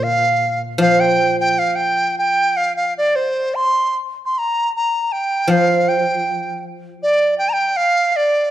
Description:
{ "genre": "chinese traditional, Chinese chamber ensemble", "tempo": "77 BPM", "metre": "2/4", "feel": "rubato", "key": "unclear", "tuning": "A4 = 440 Hz", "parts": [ { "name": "dizi", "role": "melody", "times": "0.0-8.5 s", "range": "C5 to C6", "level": "-16 LUFS", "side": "right 1 dB", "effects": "none" }, { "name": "guzheng", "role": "accompaniment", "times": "0.0-3.1, 5.5-7.8 s", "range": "Bb2 to F3", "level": "-19 LUFS", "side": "equal", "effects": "none" } ], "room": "moderate recital hall reverb, RT60 1.9 s", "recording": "dark, warm production", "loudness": "-15 LUFS", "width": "side -12 dB against mid", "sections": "0.0-8.5 A section", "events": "none", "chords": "none", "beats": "0.05 | 0.81 1.58 | 2.36 3.14 | 3.94 4.73 | 5.50 6.26 | 7.03 7.80" }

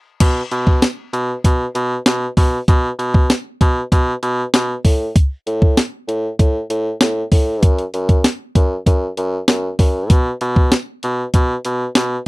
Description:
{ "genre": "1980s-style pop", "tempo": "97 BPM", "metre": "4/4", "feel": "straight", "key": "unclear", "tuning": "A4 = 442 Hz", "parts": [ { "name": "warm bassoon", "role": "bass", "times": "0.2-12.2 s", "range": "F#2 to B2", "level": "-19 LUFS", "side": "equal", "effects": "none" }, { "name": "clean 12-bit digital drum machine", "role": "drums", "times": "0.2-12.1 s", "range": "crash cymbal, hi-hat, kick drum, snare drum, tambourine", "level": "-13 LUFS", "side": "equal", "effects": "none" } ], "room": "little or no reverb", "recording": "dry, close 1970s-style studio recording", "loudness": "-14 LUFS", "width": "side -23 dB against mid", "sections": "0.2-12.3 A section", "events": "band accent 0.0", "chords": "none", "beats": "| 0.20 0.82 1.44 2.06 | 2.68 3.30 3.92 4.53 | 5.15 5.77 6.39 7.01 | 7.63 8.24 8.86 9.48 | 10.10 10.72 11.34 11.96" }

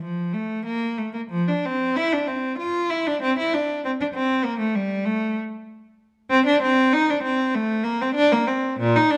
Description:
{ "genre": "classical, baroque-style suite movement for unaccompanied cello", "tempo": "96 BPM", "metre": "4/4", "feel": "rubato", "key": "D minor", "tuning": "A4 = 440 Hz", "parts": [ { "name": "rich cello", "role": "solo", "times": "0.0-9.2 s", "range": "Bb2 to F4", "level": "-22 LUFS", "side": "equal", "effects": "none" } ], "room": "moderate recital hall reverb, RT60 1.4 s", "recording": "dark, warm production", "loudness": "-23 LUFS", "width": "mono", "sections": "0.0-9.2 A section", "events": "none", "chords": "none", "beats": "0.02 0.66 | 1.32 1.96 2.58 3.20 | 3.82 4.43 5.06 5.68 | 6.30 6.93 7.55 8.17 | 8.80" }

